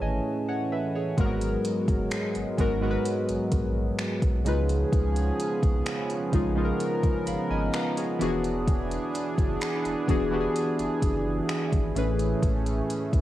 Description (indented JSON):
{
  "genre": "contemporary R&B",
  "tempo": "64 BPM",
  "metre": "4/4",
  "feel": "straight",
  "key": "unclear",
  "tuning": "A4 = 440 Hz",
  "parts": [
    { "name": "warm analog keys", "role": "accompaniment", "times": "0.0-13.2 s", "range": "G#2 to B5", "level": "-29 LUFS", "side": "left 1 dB", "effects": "chorus, cassette tape" },
    { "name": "chorused pulse-width pad", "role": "sustained chords", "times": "0.0-13.2 s", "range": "E3 to A#4", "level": "-30 LUFS", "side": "right 1 dB", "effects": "sidechain pumping, cassette tape" },
    { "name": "warm sub bass", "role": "bass", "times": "0.0-13.2 s", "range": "E1 to C#2", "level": "-30 LUFS", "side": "equal", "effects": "none" },
    { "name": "smooth R&B drum kit", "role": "drums", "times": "1.2-13.2 s", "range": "finger snaps, hi-hat, kick drum", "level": "-28 LUFS", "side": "equal", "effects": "cassette tape" }
  ],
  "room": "little or no reverb",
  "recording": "home recording on cassette",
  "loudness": "-24 LUFS",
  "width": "side -14 dB against mid",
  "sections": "0.0-13.2 A section",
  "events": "none",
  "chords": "0.0 Amaj7; 1.2 G#m9; 4.5 C#7; 8.2 E7; 12.0 Amaj7"
}